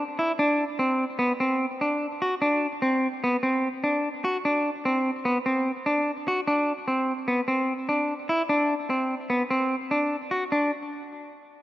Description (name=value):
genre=progressive instrumental, progressive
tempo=148 BPM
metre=5/4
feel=straight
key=D mixolydian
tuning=A4 = 440 Hz
part: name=semi-hollow electric guitar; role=solo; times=0.0-10.7 s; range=B3 to F#4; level=-23 LUFS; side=equal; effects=tape echo
room=moderate lush hall reverb, RT60 2.6 s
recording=rough home demo mix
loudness=-23 LUFS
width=side -15 dB against mid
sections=0.0-10.5 A section; 10.5-11.6 B section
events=none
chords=none